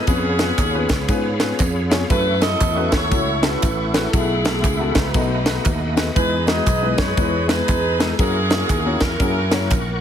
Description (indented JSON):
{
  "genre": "uptempo gospel",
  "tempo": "118 BPM",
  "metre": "4/4",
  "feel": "swing 62% on 8ths",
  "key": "unclear",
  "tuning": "A4 = 445 Hz",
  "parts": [
    { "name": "clear saxophone section", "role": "melody", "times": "0.0-10.0 s", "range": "B3 to D#5", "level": "-23 LUFS", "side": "right 1 dB", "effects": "none" },
    { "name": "bright tonewheel organ", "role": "sustained chords", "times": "0.0-10.0 s", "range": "A3 to C#6", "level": "-28 LUFS", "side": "right 2 dB", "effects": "fast rotary speaker, chorus vibrato" },
    { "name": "warm upright piano", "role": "accompaniment", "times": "0.1-9.7 s", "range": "B2 to C#5", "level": "-25 LUFS", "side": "left 5 dB", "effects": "none" },
    { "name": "fingered electric bass", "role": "bass", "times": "0.1-10.0 s", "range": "A1 to G#2", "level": "-23 LUFS", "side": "equal", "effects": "none" },
    { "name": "crisp fusion drum kit", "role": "drums", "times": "0.1-9.9 s", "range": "kick drum, ride cymbal, snare drum", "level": "-21 LUFS", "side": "equal", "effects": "none" },
    { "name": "tambourine and handclaps", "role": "percussion", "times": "0.1-9.9 s", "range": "none", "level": "-34 LUFS", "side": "right 5 dB", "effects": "none" }
  ],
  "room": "light reverb",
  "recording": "heavily compressed radio sound, multiband compression",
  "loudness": "-16 LUFS",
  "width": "side -9 dB against mid",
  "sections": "0.0-10.0 A section",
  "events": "none",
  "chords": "0.1 C#7; 2.1 F#m7; 4.1 B7sus4; 5.1 B7; 6.2 Emaj7; 8.2 F#7",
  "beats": "| 0.07 0.58 1.09 1.60 | 2.10 2.61 3.12 3.62 | 4.13 4.64 5.15 5.65 | 6.16 6.67 7.17 7.68 | 8.19 8.70 9.20 9.71"
}